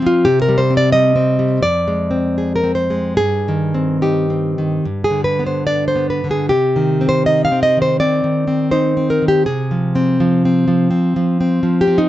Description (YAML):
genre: romantic piece for solo classical guitar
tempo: 71-89 BPM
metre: 4/4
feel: rubato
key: C minor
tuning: A4 = 440 Hz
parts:
  - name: nylon-string guitar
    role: solo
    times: 0.0-12.1 s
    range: F2 to F5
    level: -13 LUFS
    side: equal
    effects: none
room: light reverb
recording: nothing above 7.9 kHz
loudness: -14 LUFS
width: side -14 dB against mid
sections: 0.0-12.1 A section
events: none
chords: 0.3 Cm; 1.6 Fm; 3.2 Cm/G; 4.8 G; 6.5 Cm; 9.5 Fm/C